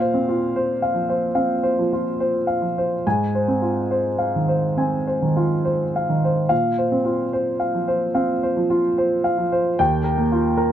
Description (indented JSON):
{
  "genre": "neoclassical minimalist piano",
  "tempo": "68-75 BPM",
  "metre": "4/4",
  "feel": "rubato",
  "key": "unclear",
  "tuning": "A4 = 440 Hz",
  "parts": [
    { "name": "warm upright piano", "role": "solo", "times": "0.0-10.7 s", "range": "Eb2 to Ab5", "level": "-18 LUFS", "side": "equal", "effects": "none" }
  ],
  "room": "light reverb",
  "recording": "close, detailed microphones",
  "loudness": "-18 LUFS",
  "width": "side -10 dB against mid",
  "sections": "0.0-10.7 A section",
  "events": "none",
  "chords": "0.0 Bbsus2; 3.0 Ab6; 6.5 Bbsus2; 9.8 Ebadd9"
}